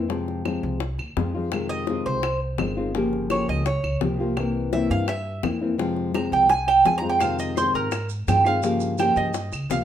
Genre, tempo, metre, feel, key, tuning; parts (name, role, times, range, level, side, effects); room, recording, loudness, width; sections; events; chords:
latin, Cuban son and guajira; 169 BPM; 4/4; straight; F minor; A4 = 440 Hz
nylon-string guitar; accompaniment; 0.0-9.8 s; C3 to G4; -26 LUFS; left 3 dB
upright bass; bass; 0.0-9.8 s; G1 to Ab2; -29 LUFS; equal
bongos; percussion; 0.1-9.8 s; -30 LUFS; left 7 dB
claves; percussion; 0.5-9.7 s; -38 LUFS; right 3 dB
Cuban tres; arpeggios; 1.7-9.8 s; Bb4 to Bb5; -22 LUFS; right 3 dB
maracas; percussion; 7.2-9.8 s; -41 LUFS; right 9 dB
moderate large studio reverb, RT60 0.8 s; minimal, uncompressed stereo recording; -21 LUFS; side -10 dB against mid
0.0-9.8 A section
Cuban tres solo 0.0-9.8
0.1 Fm; 1.5 Fm7; 3.0 Gm7b5; 4.4 C7; 5.8 Fm; 7.2 Fm7; 8.6 Gm7b5